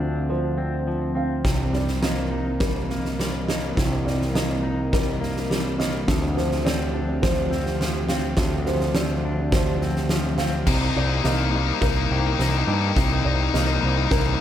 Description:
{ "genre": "post-rock", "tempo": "104 BPM", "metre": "4/4", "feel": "straight", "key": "C minor", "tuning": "A4 = 440 Hz", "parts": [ { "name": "airy breathy pad", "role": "sustained chords", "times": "0.0-14.4 s", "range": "C4 to Bb5", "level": "-32 LUFS", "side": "right 1 dB", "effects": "chorus" }, { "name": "felt-muted upright piano", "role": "arpeggios", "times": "0.0-14.4 s", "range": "Bb4 to F5", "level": "-32 LUFS", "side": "right 1 dB", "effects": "digital delay" }, { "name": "semi-hollow electric guitar", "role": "arpeggios", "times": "0.0-14.4 s", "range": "C3 to G4", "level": "-30 LUFS", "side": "left 1 dB", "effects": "harmonic tremolo, digital delay" }, { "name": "growling picked electric bass", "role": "bass", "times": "0.0-14.3 s", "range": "C2 to G2", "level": "-25 LUFS", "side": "equal", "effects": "overdrive" }, { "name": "huge arena drum kit", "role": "drums", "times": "1.4-14.3 s", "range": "crash cymbal, kick drum, snare drum", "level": "-25 LUFS", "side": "equal", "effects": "none" }, { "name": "tight distorted guitar", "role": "riff", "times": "10.7-14.4 s", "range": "Bb3 to Eb4", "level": "-24 LUFS", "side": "left 9 dB", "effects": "distortion" } ], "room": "light reverb", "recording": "none", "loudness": "-20 LUFS", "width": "side -10 dB against mid", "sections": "0.0-10.7 A section; 10.7-14.4 B section", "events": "build-up 10.7-14.4; drum fill 10.7-14.4", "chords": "0.0 G7sus4/D (rootless); 1.5 Cm7; 6.1 G7sus4/D; 10.7 Cm7", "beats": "0.30 0.88 | 1.46 2.04 2.61 3.19 | 3.77 4.35 4.92 5.50 | 6.08 6.65 7.23 7.80 | 8.38 8.96 9.53 10.11 | 10.68 11.25 11.83 12.40 | 12.98 13.55 14.12" }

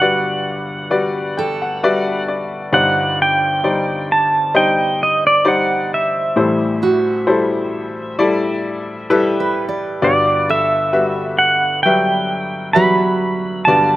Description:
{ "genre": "acoustic folk-pop ballad", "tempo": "66 BPM", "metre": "4/4", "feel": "straight", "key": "G major", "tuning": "A4 = 441 Hz", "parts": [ { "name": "pedal steel guitar", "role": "melody", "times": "0.0-14.0 s", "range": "D5 to B5", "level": "-16 LUFS", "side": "right 1 dB", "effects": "none" }, { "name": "bright grand piano", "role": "accompaniment", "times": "0.0-14.0 s", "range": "G1 to G5", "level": "-18 LUFS", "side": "left 2 dB", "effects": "none" }, { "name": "picked steel-string acoustic guitar", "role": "arpeggios", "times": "1.4-14.0 s", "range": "F#3 to D5", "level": "-22 LUFS", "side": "right 4 dB", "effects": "slapback echo" } ], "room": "little or no reverb", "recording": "recorded outdoors, with no room sound", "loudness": "-14 LUFS", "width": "side -15 dB against mid", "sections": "0.0-14.0 A section", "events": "none", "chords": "0.0 Gmaj7; 2.7 Cmadd9/G; 6.4 Am7; 10.0 Gmaj7", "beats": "0.01 0.92 1.82 | 2.73 3.64 4.54 5.46 | 6.37 7.28 8.19 9.11 | 10.02 10.93 11.85 12.76 | 13.67" }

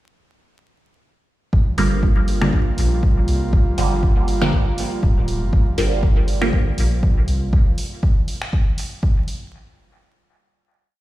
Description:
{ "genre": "dub techno", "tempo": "120 BPM", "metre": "4/4", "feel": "swing 55% on 16ths", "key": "G minor", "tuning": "A4 = 440 Hz", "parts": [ { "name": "airy breathy pad", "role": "sustained chords", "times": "1.7-7.5 s", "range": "G3 to F4", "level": "-28 LUFS", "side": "right 1 dB", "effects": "chorus, sidechain pumping" }, { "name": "soft dub sub bass", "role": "bass", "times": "1.5-7.5 s", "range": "D1 to C2", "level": "-21 LUFS", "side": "equal", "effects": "sidechain pumping" }, { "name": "electronic kick drum", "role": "drums", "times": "1.5-9.1 s", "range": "none", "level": "-18 LUFS", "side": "equal", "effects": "none" }, { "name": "filtered dub chord stab", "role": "stabs", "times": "1.8-6.7 s", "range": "D3 to Bb3", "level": "-23 LUFS", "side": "right 2 dB", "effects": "phaser, sidechain pumping, dub echo" }, { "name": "punchy analog drum machine", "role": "drums", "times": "1.8-9.4 s", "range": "finger snaps, hi-hat", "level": "-32 LUFS", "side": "right 1 dB", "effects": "dub echo" } ], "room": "little or no reverb", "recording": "played on a big sound system in a bare room, stone room reverb, vinyl crackle", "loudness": "-16 LUFS", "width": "side -16 dB against mid", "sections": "1.5-9.5 groove", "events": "none", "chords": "1.5 Gm7", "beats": "| 1.53 2.03 2.53 3.03 | 3.53 4.03 4.53 5.03 | 5.53 6.03 6.53 7.03 | 7.53 8.03 8.53 9.03" }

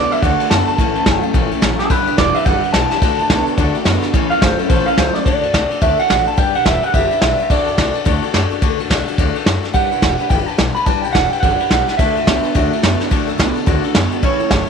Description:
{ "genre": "rockabilly", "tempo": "214 BPM", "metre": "4/4", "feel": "swing 62% on 8ths", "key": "D major", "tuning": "A4 = 440 Hz", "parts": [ { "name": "electric guitar through a small old amp", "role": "melody", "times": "0.0-14.7 s", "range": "A4 to B5", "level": "-18 LUFS", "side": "right 2 dB", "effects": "tape echo" }, { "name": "picked steel-string acoustic guitar", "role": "accompaniment", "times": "0.0-14.7 s", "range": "A2 to B4", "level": "-21 LUFS", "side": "left 14 dB", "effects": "none" }, { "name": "electric guitar through a small old amp", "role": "riff", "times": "0.0-5.2, 12.0-14.7 s", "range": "G2 to B3", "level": "-23 LUFS", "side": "right 15 dB", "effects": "analog chorus" }, { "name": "upright bass", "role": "bass", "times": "0.0-14.6 s", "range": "E1 to F#2", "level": "-22 LUFS", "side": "equal", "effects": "none" }, { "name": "vintage brush drum kit", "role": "drums", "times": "0.1-14.7 s", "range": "kick drum, ride cymbal, snare drum", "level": "-17 LUFS", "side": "equal", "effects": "none" } ], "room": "moderate spring reverb, RT60 1.9 s, small room ambience", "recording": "1960s-style stereo with parts hard left and right", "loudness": "-13 LUFS", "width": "side -6 dB against mid", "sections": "0.0-5.3 A section; 5.3-14.7 B section", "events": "clean electric guitar solo 0.0-5.3", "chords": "0.0 D; 0.8 A; 1.9 G; 3.0 D; 4.1 A; 5.3 D; 6.4 G; 7.5 D; 9.7 G; 12.0 D", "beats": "0.22 0.50 | 0.78 1.06 1.34 1.62 | 1.90 2.18 2.46 2.74 | 3.02 3.30 3.58 3.86 | 4.14 4.42 4.70 4.98 | 5.26 5.54 5.82 6.10 | 6.38 6.66 6.94 7.22 | 7.50 7.78 8.06 8.34 | 8.62 8.90 9.18 9.46 | 9.74 10.03 10.31 10.59 | 10.87 11.15 11.43 11.71 | 11.99 12.27 12.55 12.83 | 13.11 13.39 13.67 13.95 | 14.23 14.51" }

